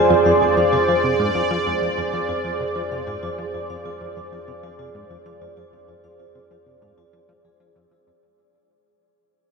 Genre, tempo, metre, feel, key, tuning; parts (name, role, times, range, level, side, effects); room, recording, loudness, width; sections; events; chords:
ambient, sequencer-driven space music; 96 BPM; 4/4; straight; F dorian; A4 = 440 Hz
sweeping resonant pad; sustained chords; 0.0-8.3 s; Ab4 to D5; -20 LUFS; right 1 dB; chorus, shimmer reverb
vibraphone with hard mallets; arpeggios; 0.0-8.0 s; F4 to E6; -31 LUFS; equal; auto-pan, ping-pong delay, shimmer reverb
analog drone; bass; 0.0-8.2 s; F2; -37 LUFS; equal; chorus
plucky analog bass; riff; 0.1-8.1 s; F2 to F3; -27 LUFS; left 1 dB; ping-pong delay, shimmer reverb
wet huge ambient reverb, RT60 8.0 s; dreamy mix soaked in reverb; -18 LUFS; side -4 dB against mid
0.0-8.2 A section
fade-out on analog synth bass 0.0-8.2; fade-out on vibraphone 0.0-8.2; fade-out on synth drone 0.0-8.2; fade-out 0.0-8.2
0.0 Fm